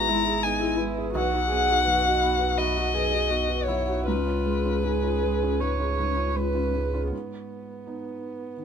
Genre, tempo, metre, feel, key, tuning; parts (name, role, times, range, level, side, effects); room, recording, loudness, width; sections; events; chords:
neoclassical piano and strings; 76-86 BPM; 4/4; rubato; G# minor; A4 = 440 Hz
dark violin; melody; 0.0-6.3 s; B4 to A#5; -25 LUFS; left 4 dB
dark viola; accompaniment; 0.0-8.6 s; B3 to C#5; -30 LUFS; right 6 dB
felt-muted upright piano; accompaniment; 0.0-8.6 s; B1 to G#4; -31 LUFS; right 3 dB
pure sine sub bass; bass; 0.0-7.1 s; G#1 to C#2; -30 LUFS; right 1 dB
vibraphone with soft mallets; arpeggios; 0.1-7.0 s; C#4 to B5; -33 LUFS; left 6 dB
light reverb; minimal, uncompressed stereo recording; -22 LUFS; side -7 dB against mid
0.0-7.1 A section; 7.1-8.6 B section
0.0 E/G#; 1.1 B; 4.1 C#7; 7.1 G#m